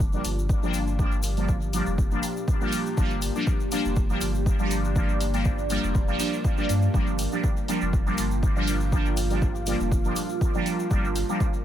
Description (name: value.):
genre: dub techno.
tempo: 121 BPM.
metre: 4/4.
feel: swing 54% on 16ths.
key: G minor.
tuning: A4 = 440 Hz.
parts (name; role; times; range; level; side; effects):
deep dark ambient pad; sustained chords; 0.4-11.6 s; Bb3 to G5; -32 LUFS; right 2 dB; chorus, built-in reverb, sidechain pumping.
warm sub bass; bass; 0.0-11.2 s; F1 to G2; -28 LUFS; equal; sidechain pumping.
electronic kick drum; drums; 0.0-11.5 s; none; -25 LUFS; equal; small room ambience.
tube shaker; percussion; 0.0-11.6 s; none; -40 LUFS; left 5 dB; none.
resonant sweep polysynth; stabs; 0.1-11.4 s; F3 to D4; -28 LUFS; equal; chorus, phaser, sidechain pumping, dub echo.
electronic hi-hat; drums; 0.2-11.3 s; none; -36 LUFS; left 1 dB; small room ambience.
room: little or no reverb.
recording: echo-heavy mix.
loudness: -22 LUFS.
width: side -11 dB against mid.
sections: 0.0-11.6 A section.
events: none.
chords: 0.0 Gm7.